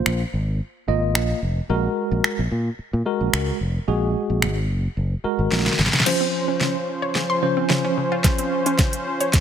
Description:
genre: dance-pop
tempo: 110 BPM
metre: 4/4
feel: straight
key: Db major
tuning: A4 = 439 Hz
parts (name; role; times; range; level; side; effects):
- tine electric piano; accompaniment; 0.0-8.9 s; F3 to Eb5; -24 LUFS; right 1 dB; medium stereo tremolo, sidechain pumping
- fingered electric bass; bass; 0.1-5.9 s; F1 to Bb2; -22 LUFS; equal; sidechain pumping
- pop drum kit; drums; 0.1-9.4 s; crash cymbal, finger snaps, hi-hat, kick drum, snare drum; -21 LUFS; equal; none
- warm analog pad; sustained chords; 6.1-9.4 s; F3 to C5; -25 LUFS; equal; chorus, tremolo, sidechain pumping
- wide unison pluck; arpeggios; 6.1-9.4 s; Db3 to C6; -26 LUFS; left 1 dB; sidechain pumping, tape echo
room: light reverb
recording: none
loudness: -19 LUFS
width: side -9 dB against mid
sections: 0.0-6.1 A section; 6.1-9.4 B section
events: drum fill 5.5-6.1, 6.1-9.4; build-up 6.1-9.4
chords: 0.0 Bbsus2; 1.7 Gbadd9; 6.1 Dbmaj7

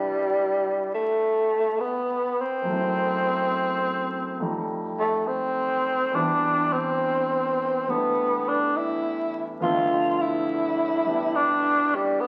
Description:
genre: jazz ballad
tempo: 69 BPM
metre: 4/4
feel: swing 68% on 8ths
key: unclear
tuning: A4 = 440 Hz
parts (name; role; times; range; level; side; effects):
- growling tenor saxophone; melody; 0.0-12.3 s; G3 to F4; -25 LUFS; equal; none
- warm baby grand piano; accompaniment; 0.0-12.3 s; E2 to E5; -33 LUFS; equal; none
room: wet large studio reverb, RT60 1.3 s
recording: very old 78 rpm record, vinyl crackle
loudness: -25 LUFS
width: mono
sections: 0.0-12.3 A section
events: none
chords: 0.0 Cmaj9; 2.7 F#m7b5; 4.4 F9; 6.1 Em7; 9.6 G13

